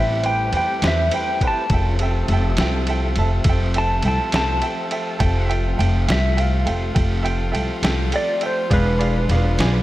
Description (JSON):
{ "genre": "slow blues", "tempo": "68 BPM (dotted quarters)", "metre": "12/8", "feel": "straight", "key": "unclear", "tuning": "A4 = 439 Hz", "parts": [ { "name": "clean lap steel guitar", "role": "melody", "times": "0.0-9.8 s", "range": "B4 to A5", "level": "-24 LUFS", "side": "equal", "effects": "slapback echo" }, { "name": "bright upright piano", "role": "accompaniment", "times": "0.0-9.8 s", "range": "G#4 to A5", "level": "-28 LUFS", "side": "right 4 dB", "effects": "slapback echo" }, { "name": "tonewheel organ", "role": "sustained chords", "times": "0.0-9.8 s", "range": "A3 to E5", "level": "-30 LUFS", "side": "equal", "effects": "slow rotary speaker, overdrive" }, { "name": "warm horn section", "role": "sustained chords", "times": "0.0-9.8 s", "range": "D3 to G4", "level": "-31 LUFS", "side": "left 1 dB", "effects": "none" }, { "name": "upright bass", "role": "bass", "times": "0.0-9.8 s", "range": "E1 to E2", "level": "-20 LUFS", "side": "equal", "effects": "none" }, { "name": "lo-fi sampler-style drum kit", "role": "drums", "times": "0.2-9.7 s", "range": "kick drum, ride cymbal, snare drum", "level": "-24 LUFS", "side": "equal", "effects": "none" } ], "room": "light reverb, small room ambience", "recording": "none", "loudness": "-17 LUFS", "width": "side -16 dB against mid", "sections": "0.0-9.8 A section", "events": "electric slide guitar solo 0.0-9.8", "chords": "0.0 Am7; 1.7 Fmaj7; 8.7 E7b9", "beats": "0.82 | 1.70 2.58 3.45 4.33 | 5.21 6.08 6.96 7.84 | 8.72 9.59" }